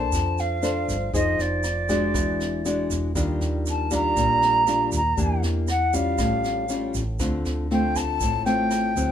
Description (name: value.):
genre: bossa nova.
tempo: 119 BPM.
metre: 4/4.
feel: straight.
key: unclear.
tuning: A4 = 439 Hz.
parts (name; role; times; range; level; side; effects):
silver concert flute; melody; 0.0-9.1 s; D5 to Bb5; -24 LUFS; right 1 dB; none.
nylon-string guitar; accompaniment; 0.0-9.1 s; A2 to C5; -26 LUFS; left 2 dB; none.
hollow-body short-scale fingered electric bass; bass; 0.0-9.1 s; E1 to F2; -28 LUFS; right 1 dB; none.
jazz brush drum kit; drums; 0.1-9.0 s; kick drum, rim click, snare drum; -32 LUFS; right 1 dB; none.
egg shaker; percussion; 0.1-9.1 s; none; -36 LUFS; right 10 dB; none.
room: light reverb.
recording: minimal, uncompressed stereo recording.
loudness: -21 LUFS.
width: side -9 dB against mid.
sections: 0.0-9.1 A section.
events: none.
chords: 0.0 Bbmaj9; 1.1 Fm7; 2.1 E9; 3.2 Ebmaj9; 5.2 Em7b5; 6.2 Aaug7; 7.2 Dm7.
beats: 0.12 0.63 | 1.13 1.64 2.15 2.65 | 3.15 3.66 4.17 4.67 | 5.18 5.68 6.19 6.69 | 7.20 7.70 8.21 8.71.